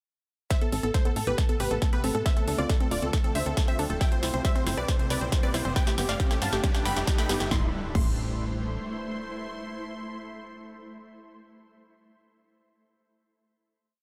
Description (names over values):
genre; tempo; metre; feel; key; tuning
uplifting trance; 137 BPM; 4/4; straight; A minor; A4 = 440 Hz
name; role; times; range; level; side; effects
unison pluck; melody; 0.5-11.4 s; F4 to C6; -35 LUFS; equal; sidechain pumping, digital delay
supersaw stab; second line; 0.5-11.4 s; G4 to C6; -40 LUFS; equal; sidechain pumping
shimmering ambient pad; sustained chords; 1.5-10.9 s; C3 to C5; -39 LUFS; equal; chorus, built-in reverb, sidechain pumping
unison pluck; arpeggios; 0.5-8.1 s; G3 to E4; -38 LUFS; equal; cassette tape, sidechain pumping, digital delay
big-room dance drum kit; drums; 0.5-8.1 s; crash cymbal, hi-hat, snare drum, toms; -37 LUFS; equal; high-pass filter on snare, sidechain pumping on hats, high-pass filter on hats, sidechain pumping on toms, high-pass filter on toms, sidechain pumping on cymbals, high-pass filter on cymbals
electronic kick drum; drums; 0.5-8.1 s; none; -27 LUFS; equal; none
riser and impact; sound effects; 3.3-11.0 s; none; -42 LUFS; equal; none
tight sequencer bass; bass; 0.7-8.8 s; D1 to A2; -34 LUFS; equal; sidechain pumping
room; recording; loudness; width
little or no reverb; none; -27 LUFS; mono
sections
0.5-7.5 build; 7.5-11.0 final chord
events
build-up 0.5-7.5; drum fill 0.5-7.5; filter sweep on synth arpeggio sound 0.5-7.5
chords
0.5 Amadd9; 2.3 Dm7; 4.0 C; 5.8 Gadd9; 7.5 Am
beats
| 0.51 0.94 1.38 1.82 | 2.26 2.69 3.13 3.57 | 4.01 4.45 4.88 5.32 | 5.76 6.20 6.64 7.07 | 7.51 7.95 8.39 8.83 | 9.26 9.70 10.14 10.58